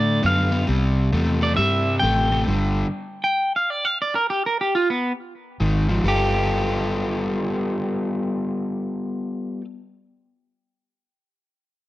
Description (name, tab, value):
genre	electric blues shuffle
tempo	134 BPM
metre	4/4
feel	swing 64% on 8ths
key	G mixolydian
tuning	A4 = 440 Hz
part	electric guitar at the edge of break-up	melody	0.0-9.6 s	B3 to G5	-22 LUFS	right 1 dB	none
part	crunchy overdriven guitar	riff	0.0-2.9, 5.6-9.6 s	G2 to A4	-23 LUFS	left 1 dB	spring reverb
part	vintage muted fingered electric bass	bass	0.0-2.8, 5.6-9.6 s	G1 to A2	-23 LUFS	equal	none
room	little or no reverb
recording	none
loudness	-20 LUFS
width	side -16 dB against mid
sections	0.0-6.1 A section; 6.1-9.6 B section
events	stop 2.5-5.6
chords	0.0 D; 0.7 C; 2.5 G5; 5.6 Ab5; 6.1 G9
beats	0.23 | 0.68 1.13 1.58 2.03 | 2.47 2.92 3.37 3.81 | 4.26 4.71 5.16 5.61 | 6.05 6.50 6.95 7.39 | 7.84 8.29 8.74 9.18